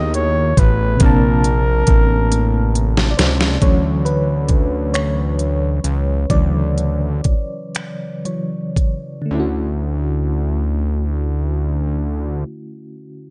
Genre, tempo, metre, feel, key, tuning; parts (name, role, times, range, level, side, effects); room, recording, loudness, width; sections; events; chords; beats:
slow six-eight R&B; 37-46 BPM (dotted quarters); 6/8; straight; D major; A4 = 440 Hz
breathy flugelhorn; melody; 0.0-3.2 s; Bb4 to D#5; -23 LUFS; equal
FM electric piano with tremolo; accompaniment; 0.0-13.3 s; C3 to A5; -25 LUFS; equal
fat analog bass; bass; 0.0-12.4 s; A1 to D#2; -20 LUFS; equal
smooth R&B drum kit; drums; 0.1-9.0 s; finger snaps, hi-hat, kick drum, snare drum; -18 LUFS; equal
little or no reverb; nothing above 10.3 kHz; -18 LUFS; mono
0.0-3.6 A section; 3.6-9.3 B section; 9.3-12.6 C section
drum fill 2.3-3.6; slowing down 3.6-9.3; FM electric piano solo 3.6-9.3
0.0 Emaj9; 1.0 Bbmaj9; 3.6 Dmaj9
| 1.00 2.31 | 3.61 4.93 | 6.30 7.74 | 9.30 10.93